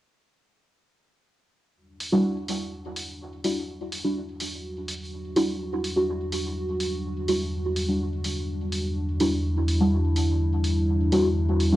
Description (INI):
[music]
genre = dub techno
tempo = 125 BPM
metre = 4/4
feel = straight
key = E minor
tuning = A4 = 440 Hz
[part]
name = dark analog pad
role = sustained chords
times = 1.8-11.8 s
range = E2 to F#4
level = -26 LUFS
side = equal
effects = chorus, cassette tape
[part]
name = electronic hi-hat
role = drums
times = 2.0-11.7 s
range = none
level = -34 LUFS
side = equal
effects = cassette tape
[part]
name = deep mellow chord stab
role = stabs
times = 2.1-11.8 s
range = G3 to F#4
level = -26 LUFS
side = equal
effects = chorus, phaser, cassette tape, dub echo
[sound]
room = light reverb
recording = home recording on cassette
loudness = -24 LUFS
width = side -15 dB against mid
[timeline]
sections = 1.8-11.8 A section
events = none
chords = 1.8 Em9